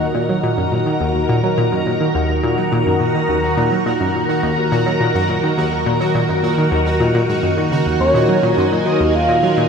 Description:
ambient, sequencer-driven space music; 105 BPM; 4/4; straight; Eb dorian; A4 = 440 Hz
string machine, full ensemble; sustained chords; 0.0-9.7 s; Eb3 to Bb5; -17 LUFS; equal; ensemble chorus
analog pluck; riff; 0.0-9.7 s; Eb2 to Gb3; -19 LUFS; equal; chorus, ping-pong delay
pulsing gated texture; texture; 0.0-9.7 s; Gb4 to C6; -25 LUFS; equal; chorus, built-in reverb
pulse-width lead; melody; 8.0-9.7 s; Db5 to F5; -18 LUFS; right 1 dB; chorus, ping-pong delay
wet plate reverb, RT60 3.5 s; -14 LUFS; side -6 dB against mid
0.0-9.7 A section
0.0 Ebm

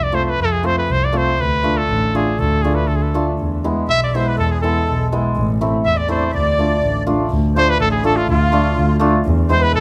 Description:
klezmer; 122 BPM; 2/4; straight; D dorian sharp4; A4 = 438 Hz
clear cornet; melody; 0.0-9.8 s; F4 to E5; -22 LUFS; equal; tape echo
dark double bass; bass; 0.0-9.8 s; A1 to F2; -21 LUFS; equal
hammered dulcimer; accompaniment; 0.1-9.8 s; G#3 to F4; -23 LUFS; equal
musette accordion; second line; 3.9-9.8 s; F4 to E5; -26 LUFS; equal
light reverb; close, detailed microphones; -17 LUFS; mono
0.0-7.3 A section; 7.3-9.8 B section
speeding up 0.0-9.8
0.0 F; 1.4 Dm; 3.4 E; 5.4 Am; 6.3 Dm; 9.3 E

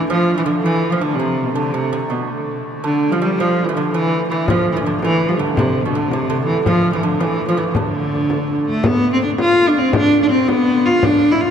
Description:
medieval dance; 110 BPM (dotted quarters); 6/8; straight; D dorian; A4 = 440 Hz
warm viola da gamba; melody; 0.0-11.5 s; B2 to F4; -16 LUFS; equal
lute; second line; 0.0-8.6 s; B2 to G3; -23 LUFS; right 5 dB
rich hurdy-gurdy; drone; 0.0-11.5 s; D3 to A3; -28 LUFS; left 1 dB
frame drum; percussion; 4.5-11.3 s; -23 LUFS; left 2 dB
wet cathedral reverb, RT60 4.8 s; dark, warm production; -15 LUFS; side -8 dB against mid
0.1-8.9 A section; 8.9-11.5 B section

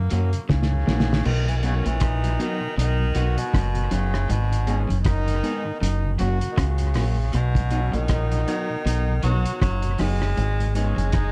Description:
roots reggae; 79 BPM; 4/4; swing 57% on 16ths; B major; A4 = 437 Hz
clear tenor saxophone; melody; 0.0-11.3 s; B2 to A#3; -32 LUFS; equal; tape echo
deep dub fingered electric bass; bass; 0.0-11.3 s; F#1 to F#2; -25 LUFS; equal
mellow tonewheel organ; accompaniment; 0.1-11.0 s; F#2 to G#4; -37 LUFS; equal
semi-hollow electric guitar; accompaniment; 0.1-11.0 s; F#3 to G#4; -36 LUFS; equal; tape echo
electric guitar at the edge of break-up; riff; 0.1-11.2 s; F#2 to F#3; -33 LUFS; equal
cloth-damped thuddy drum kit; drums; 0.1-11.3 s; crash cymbal, hi-hat, kick drum, rim click, snare drum; -28 LUFS; equal; dub echo
brilliant trombone; second line; 1.6-11.3 s; C#4 to F#4; -36 LUFS; equal; tape echo
light reverb; dark, warm production; -23 LUFS; mono
0.0-1.3 A section; 1.3-11.3 B section
drum fill 0.5-1.3
0.0 F#; 1.3 B; 4.3 G#m; 5.8 F#; 7.3 B; 10.4 G#m

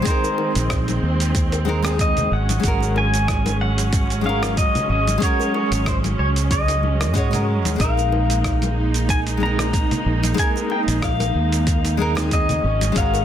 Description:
sunset chillout; 93 BPM; 4/4; swing 55% on 16ths; A4 = 440 Hz
pedal steel guitar; melody; 0.0-13.2 s; C5 to Bb5; -24 LUFS; left 2 dB; digital delay
nylon-string guitar; accompaniment; 0.0-13.2 s; Ab3 to Db5; -26 LUFS; equal; auto-pan, digital delay
rich studio string section; sustained chords; 0.0-13.2 s; Eb3 to Eb4; -27 LUFS; right 3 dB
dusty soul sampler-style drum kit; drums; 0.1-13.2 s; cabasa, hi-hat, rim click; -28 LUFS; right 2 dB; overdrive
electronic kick drum; drums; 0.1-13.1 s; -22 LUFS; equal
bongos and congas; percussion; 0.2-13.2 s; -30 LUFS; left 4 dB
fretless electric bass; bass; 0.6-13.2 s; Ab1 to Ab2; -21 LUFS; equal
little or no reverb; dense, heavily limited modern master; -17 LUFS; side -10 dB against mid
0.0-13.2 A section
0.0 Bb9sus4; 2.3 Ab9sus4; 7.8 Bb9sus4; 12.6 Ab9sus4

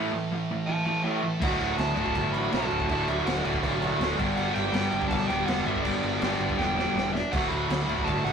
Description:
punk rock; 162 BPM; 4/4; straight; D major; A4 = 438 Hz
crunchy overdriven guitar; riff; 0.0-8.3 s; D2 to G4; -28 LUFS; left 2 dB
heavy high-gain guitar; riff; 0.0-8.3 s; D2 to A3; -37 LUFS; right 2 dB; distortion
raw garage guitar; riff; 0.0-8.3 s; D2 to G4; -32 LUFS; right 5 dB; overdrive
smooth overdriven lead guitar; melody; 0.7-8.3 s; C#5 to B5; -32 LUFS; right 3 dB
growling picked electric bass; bass; 1.4-8.3 s; D1 to G2; -34 LUFS; equal; overdrive
raw garage drum kit; drums; 1.4-8.3 s; crash cymbal, kick drum, snare drum, splash cymbal; -32 LUFS; equal
moderate stone room reverb, RT60 1.2 s; rough rehearsal-room recording, tube saturation; -24 LUFS; side -6 dB against mid
0.0-1.4 A section; 1.4-8.3 B section
break 0.0-1.4; lead electric guitar solo 0.0-1.4; drum fill 6.6-7.3
0.0 A5; 1.4 D; 4.2 G; 7.3 D

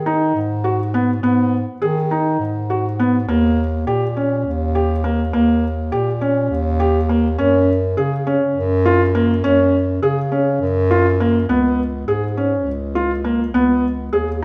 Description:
contemporary instrumental, chamber music in an uneven meter; 205 BPM (eighths); 7/8; straight; Db mixolydian; A4 = 441 Hz
mellow bass clarinet; bass; 0.0-14.4 s; Db2 to Eb3; -22 LUFS; equal
felt-muted upright piano; arpeggios; 0.1-14.3 s; Bb3 to Ab4; -20 LUFS; equal
wet recital hall reverb, RT60 1.4 s; -18 LUFS; mono
0.0-11.5 A section; 11.5-14.4 B section
0.0 Abm; 3.3 Eb7; 7.4 Gb5; 11.5 Db7(no3); 13.5 Abm/Db

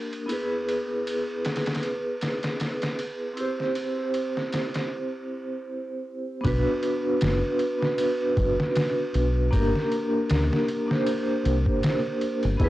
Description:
trip hop; 78 BPM; 4/4; swing 56% on 16ths; B phrygian; A4 = 440 Hz
vibraphone with medium hard mallets; accompaniment; 0.0-12.7 s; Bb3 to C5; -26 LUFS; equal; tremolo, cassette tape, tape echo
trip hop sampler-style drum kit; drums; 0.1-12.7 s; kick drum, ride cymbal, snare drum; -29 LUFS; equal; overdrive, high-pass filter on cymbals, high-pass filter on snare, high-pass filter on kick
deep dub fingered electric bass; bass; 6.4-12.7 s; E1 to D2; -24 LUFS; equal
light reverb; home recording on cassette; -24 LUFS; side -15 dB against mid
0.0-6.4 A section; 6.4-12.7 B section
break 4.9-6.4
0.3 E; 3.4 C; 6.4 Bm; 9.5 Gm

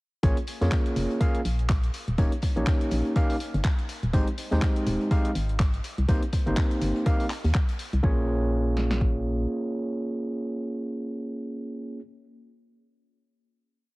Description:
deep house; 123 BPM; 4/4; swing 57% on 16ths; Bb dorian; A4 = 440 Hz
overdriven tine electric piano; stabs; 0.2-12.0 s; Ab3 to F5; -29 LUFS; equal; sidechain pumping, analog delay
organ-like FM bass; bass; 0.2-9.5 s; Eb1 to F2; -26 LUFS; equal; sidechain pumping
deep house drum kit; drums; 0.2-9.1 s; kick drum, snare drum; -24 LUFS; equal; overdrive
deep house drum kit; drums; 0.2-8.0 s; handclaps, hi-hat; -36 LUFS; equal; overdrive
oversized low-tuned drum kit; drums; 0.2-7.9 s; hi-hat, snare drum; -48 LUFS; left 2 dB
little or no reverb; heavily compressed radio sound, cassette tape; -24 LUFS; side -22 dB against mid
0.2-8.0 drop; 8.0-11.9 final chord
drop 0.2-8.0
0.2 Bbm7; 1.9 Eb7; 4.1 Abmaj7; 5.8 Cm7; 8.0 Bbm7

